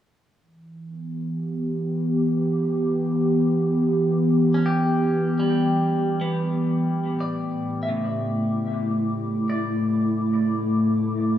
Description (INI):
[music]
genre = ambient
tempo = 72 BPM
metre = 4/4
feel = straight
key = E dorian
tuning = A4 = 440 Hz
[part]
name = airy breathy pad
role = sustained chords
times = 0.9-11.4 s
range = A2 to D6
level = -21 LUFS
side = equal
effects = chorus
[part]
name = clean electric guitar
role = arpeggios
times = 4.5-11.4 s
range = C#3 to E5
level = -29 LUFS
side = left 2 dB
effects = dub echo
[sound]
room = wet echo chamber reverb, RT60 2.1 s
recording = echo-heavy mix, small room ambience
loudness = -20 LUFS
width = side -11 dB against mid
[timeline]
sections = 0.4-11.4 A section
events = filter sweep on analog synth pad 0.4-11.4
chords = 0.4 Em7; 7.1 Asus4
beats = | 0.42 1.26 2.09 2.92 | 3.76 4.59 5.42 6.26 | 7.09 7.92 8.76 9.59 | 10.42 11.26